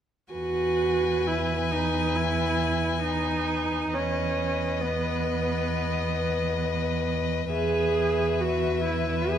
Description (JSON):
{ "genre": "classical, slow romantic movement for string quartet", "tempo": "67 BPM", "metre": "4/4", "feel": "rubato", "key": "E major", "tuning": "A4 = 440 Hz", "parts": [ { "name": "rich violin", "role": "melody", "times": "0.3-9.4 s", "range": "D#5 to G#5", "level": "-32 LUFS", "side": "left 10 dB", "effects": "none" }, { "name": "rich violin", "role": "second line", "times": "0.3-9.4 s", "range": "B4", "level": "-32 LUFS", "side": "left 5 dB", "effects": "none" }, { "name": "rich viola", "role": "accompaniment", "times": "0.3-9.4 s", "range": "B3 to G#4", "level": "-27 LUFS", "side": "right 2 dB", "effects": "none" }, { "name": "rich cello", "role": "bass", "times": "0.3-9.4 s", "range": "E2", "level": "-29 LUFS", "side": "right 3 dB", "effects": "none" } ], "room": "light reverb", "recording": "close, detailed microphones", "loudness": "-24 LUFS", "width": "side -9 dB against mid", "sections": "0.3-9.4 A section", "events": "none", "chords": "0.3 E; 3.9 B/E; 7.5 E", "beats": "| 0.33 1.27 2.16 3.04 | 3.94 4.82 5.73 6.64 | 7.54 8.41 9.30" }